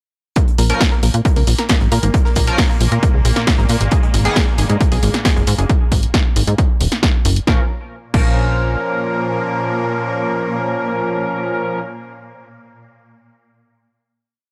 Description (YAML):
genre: driving peak-time techno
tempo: 135 BPM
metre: 4/4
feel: straight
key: Bb minor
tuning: A4 = 441 Hz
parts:
  - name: analog pluck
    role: riff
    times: 0.4-8.3 s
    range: Ab3 to Bb4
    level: -29 LUFS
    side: equal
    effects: chorus, sidechain pumping, analog delay
  - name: swarming drone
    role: drone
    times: 1.2-11.3 s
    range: Bb2 to Bb3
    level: -29 LUFS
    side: equal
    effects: built-in reverb, sidechain pumping
  - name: electronic kick drum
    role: drums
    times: 0.4-8.3 s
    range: none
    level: -18 LUFS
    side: equal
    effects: overdrive
  - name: gated 80s drum kit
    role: drums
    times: 0.4-5.7 s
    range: hi-hat, snare drum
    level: -35 LUFS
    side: equal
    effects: none
  - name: punchy analog drum machine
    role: drums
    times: 0.4-8.3 s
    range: crash cymbal, hi-hat, snare drum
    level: -23 LUFS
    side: equal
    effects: overdrive
  - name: tight sequencer bass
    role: bass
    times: 0.6-8.8 s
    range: Eb1 to Bb2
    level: -18 LUFS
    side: equal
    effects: sidechain pumping
  - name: sync-sweep polysynth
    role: stabs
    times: 0.7-4.4, 7.5-11.8 s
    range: Eb3 to Bb4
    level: -23 LUFS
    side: equal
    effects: chorus, sidechain pumping, tape echo
room: little or no reverb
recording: none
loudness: -16 LUFS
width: mono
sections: 0.4-7.5 drop; 7.5-11.0 final chord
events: drop 0.4-7.5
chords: 0.4 Bbm; 3.9 N.C.; 7.5 Bbm